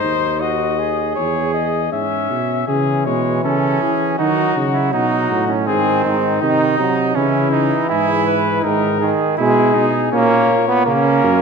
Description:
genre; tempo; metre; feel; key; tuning
classical, imitative canzona for brass ensemble; 81 BPM; 4/4; straight; C# minor; A4 = 440 Hz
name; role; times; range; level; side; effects
warm cornet; melody; 0.0-11.4 s; D#4 to E5; -21 LUFS; left 9 dB; none
warm flugelhorn; second line; 0.0-11.4 s; G#3 to G#4; -20 LUFS; right 6 dB; none
mellow tuba; bass; 0.0-11.4 s; D#2 to E3; -20 LUFS; right 1 dB; none
clear trombone; accompaniment; 2.7-11.4 s; D#3 to B3; -19 LUFS; right 2 dB; none
room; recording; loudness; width
wet concert hall reverb, RT60 2.0 s; minimal, uncompressed stereo recording; -14 LUFS; side -5 dB against mid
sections
0.0-2.7 A section; 2.7-11.4 B section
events
none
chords
0.0 G#; 1.2 C#m/E; 2.7 C#m; 4.2 D#dim; 5.7 G#; 7.2 C#m; 8.6 G#m; 10.1 F#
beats
0.42 1.17 1.92 | 2.68 3.44 4.19 4.93 | 5.68 6.42 7.17 7.91 | 8.65 9.39 10.13 10.87

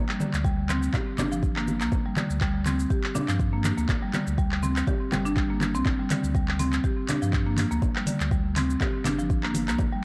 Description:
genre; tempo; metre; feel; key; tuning
afro house; 122 BPM; 4/4; swing 55% on 16ths; G minor; A4 = 439 Hz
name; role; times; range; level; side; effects
warm sub bass; bass; 0.0-9.9 s; G1 to G2; -32 LUFS; equal; sidechain pumping
marimba with medium hard mallets; arpeggios; 0.1-10.0 s; D3 to G4; -30 LUFS; equal; sidechain pumping, low-pass filter, analog delay
afro-pop drum kit; drums; 0.1-9.9 s; handclaps, hi-hat, shaker, toms; -35 LUFS; equal; cassette tape
congas; percussion; 0.2-9.9 s; none; -35 LUFS; equal; none
electronic kick drum; drums; 0.4-9.9 s; none; -29 LUFS; equal; overdrive, cassette tape
room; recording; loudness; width
light reverb; home recording on cassette; -26 LUFS; mono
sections
0.0-10.0 A section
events
none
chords
0.0 G5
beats
0.45 0.94 1.43 | 1.92 2.41 2.90 3.40 | 3.89 4.38 4.87 5.36 | 5.86 6.35 6.84 7.33 | 7.82 8.31 8.81 9.30 | 9.79

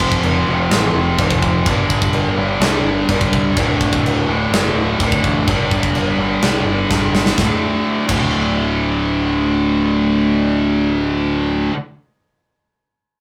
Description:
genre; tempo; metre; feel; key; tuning
heavy metal; 126 BPM; 4/4; straight; D minor; A4 = 436 Hz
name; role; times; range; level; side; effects
scooped high-gain guitar; riff; 0.0-11.7 s; D2 to G3; -22 LUFS; equal; distortion
tight distorted guitar; riff; 0.0-11.7 s; D2 to G3; -21 LUFS; equal; distortion
growling picked electric bass; bass; 0.0-11.7 s; D1 to C2; -25 LUFS; equal; overdrive
tight metal drum kit; drums; 0.0-8.2 s; china cymbal, crash cymbal, kick drum, snare drum; -21 LUFS; equal; none
room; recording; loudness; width
moderate studio ambience, RT60 0.5 s; rough rehearsal-room recording, warm saturation; -17 LUFS; mono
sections
0.0-7.4 A section; 7.4-11.2 B section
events
drum fill 6.9-7.4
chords
0.0 F5; 1.7 G5; 3.6 D5; 5.5 G5; 7.4 D5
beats
0.24 0.71 1.19 | 1.66 2.14 2.62 3.09 | 3.57 4.04 4.52 5.00 | 5.47 5.95 6.42 6.90 | 7.37 7.85 8.32 8.80 | 9.27 9.74 10.22 10.69

